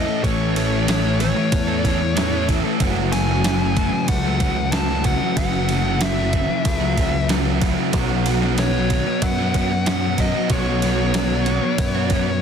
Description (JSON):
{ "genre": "rock, shoegaze and dream pop", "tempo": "94 BPM", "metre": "4/4", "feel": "straight", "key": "unclear", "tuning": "A4 = 441 Hz", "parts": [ { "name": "fuzz lead guitar", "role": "melody", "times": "0.0-12.4 s", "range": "C#5 to A5", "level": "-26 LUFS", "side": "left 3 dB", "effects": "distortion, tape echo" }, { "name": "electric guitar through a small old amp", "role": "arpeggios", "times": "0.0-12.4 s", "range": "E3 to B3", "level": "-33 LUFS", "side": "right 7 dB", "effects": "lush chorus, tape echo" }, { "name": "raw garage guitar", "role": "riff", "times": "0.0-12.3 s", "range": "F#2 to A4", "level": "-25 LUFS", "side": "right 15 dB", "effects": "overdrive, reverse reverb" }, { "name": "thick fuzz guitar", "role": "riff", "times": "0.0-12.4 s", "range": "F#2 to B3", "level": "-24 LUFS", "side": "left 13 dB", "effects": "distortion, analog chorus" }, { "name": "picked electric bass", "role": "bass", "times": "0.0-12.4 s", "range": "F#1 to F#2", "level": "-23 LUFS", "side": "right 1 dB", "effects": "none" }, { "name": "clean 12-bit digital drum machine", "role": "drums", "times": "0.2-12.3 s", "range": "kick drum, ride cymbal, snare drum", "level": "-24 LUFS", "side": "right 1 dB", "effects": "none" } ], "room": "digital ambience", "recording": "dense, heavily limited modern master", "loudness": "-17 LUFS", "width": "side -7 dB against mid", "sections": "0.0-12.4 A section", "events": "none", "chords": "0.0 A; 2.8 F#m7; 7.9 Bsus2" }